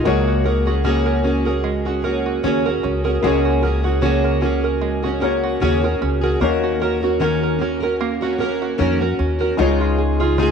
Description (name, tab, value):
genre	pop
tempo	76 BPM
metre	4/4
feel	swing 55% on 16ths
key	unclear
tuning	A4 = 440 Hz
part	fingerpicked plugged-in steel-string acoustic guitar	accompaniment	0.0-10.5 s	Db3 to Bb4	-20 LUFS	equal	double-tracked left and right
part	warm upright piano	accompaniment	0.0-10.5 s	Ab3 to Db5	-26 LUFS	left 12 dB	none
part	open-back banjo	arpeggios	0.0-10.5 s	Ab3 to Bb4	-24 LUFS	right 8 dB	none
part	upright bass	bass	0.1-10.5 s	Db2 to F2	-22 LUFS	equal	none
room	light reverb, studio ambience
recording	1960s-style stereo with parts hard left and right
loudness	-16 LUFS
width	side -6 dB against mid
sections	0.0-10.5 A section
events	none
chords	0.1 Gbadd9/Db; 6.4 Ebm7; 9.6 Dbadd9